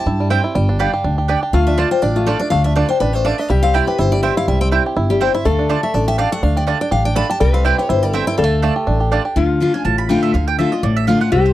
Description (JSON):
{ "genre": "bluegrass", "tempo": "246 BPM", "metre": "4/4", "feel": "swing 55% on 8ths", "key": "D dorian", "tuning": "A4 = 441 Hz", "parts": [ { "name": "bluegrass banjo", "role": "melody", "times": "0.0-9.4 s", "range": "G3 to G4", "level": "-20 LUFS", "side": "right 3 dB", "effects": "none" }, { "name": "picked steel-string acoustic guitar", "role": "accompaniment", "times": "0.0-11.5 s", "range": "A2 to B5", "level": "-20 LUFS", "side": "left 4 dB", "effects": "none" }, { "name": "upright bass", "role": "bass", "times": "0.1-11.5 s", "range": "G1 to G2", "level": "-18 LUFS", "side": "equal", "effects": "none" }, { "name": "mandolin", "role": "stabs", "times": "0.3-11.5 s", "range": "A3 to B5", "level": "-21 LUFS", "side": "right 9 dB", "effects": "none" }, { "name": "lap resonator guitar", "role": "second line", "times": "1.5-11.5 s", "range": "F4 to B4", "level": "-22 LUFS", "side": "left 4 dB", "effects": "none" } ], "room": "little or no reverb", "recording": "dry, close 1970s-style studio recording", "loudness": "-14 LUFS", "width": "side -14 dB against mid", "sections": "0.0-9.4 A section; 9.4-11.5 A section", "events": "steel-string acoustic guitar solo 0.0-9.4; mandolin solo 9.4-11.5", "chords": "0.0 C; 0.6 G; 1.5 Dm; 3.5 C; 5.5 Dm; 7.4 C; 8.4 Dm" }